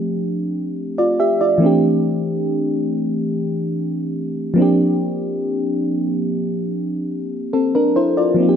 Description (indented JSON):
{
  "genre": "R&B",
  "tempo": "71 BPM",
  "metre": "4/4",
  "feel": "straight",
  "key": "unclear",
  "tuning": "A4 = 445 Hz",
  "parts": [
    { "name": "mellow FM electric piano", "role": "solo", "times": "0.0-8.6 s", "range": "E3 to E5", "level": "-17 LUFS", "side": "equal", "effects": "chorus" }
  ],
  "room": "moderate concert hall reverb, RT60 2.0 s",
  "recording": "none",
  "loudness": "-17 LUFS",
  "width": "side -8 dB against mid",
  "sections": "0.0-8.6 A section",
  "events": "none",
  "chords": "0.0 G9sus4; 1.6 D9sus4; 4.6 C9sus4"
}